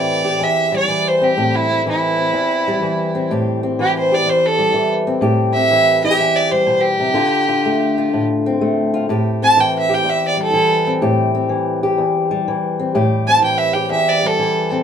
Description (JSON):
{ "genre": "acoustic country blues, solo or duo", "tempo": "124 BPM", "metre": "4/4", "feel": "swing 67% on 8ths", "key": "A minor", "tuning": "A4 = 439 Hz", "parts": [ { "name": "rich fiddle", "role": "melody", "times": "0.0-14.7 s", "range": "E4 to A5", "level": "-16 LUFS", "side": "right 2 dB", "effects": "none" }, { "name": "fingerpicked old ladder-braced acoustic guitar", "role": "accompaniment", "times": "0.0-14.8 s", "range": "E2 to G4", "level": "-18 LUFS", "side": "left 2 dB", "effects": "none" } ], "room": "wet small room reverb, RT60 0.5 s", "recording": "band playing live in one room", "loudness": "-14 LUFS", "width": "side -8 dB against mid", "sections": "0.0-14.8 A section", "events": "fiddle solo 0.0-14.8", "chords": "0.0 Am7; 7.2 Dm7; 9.1 Am7" }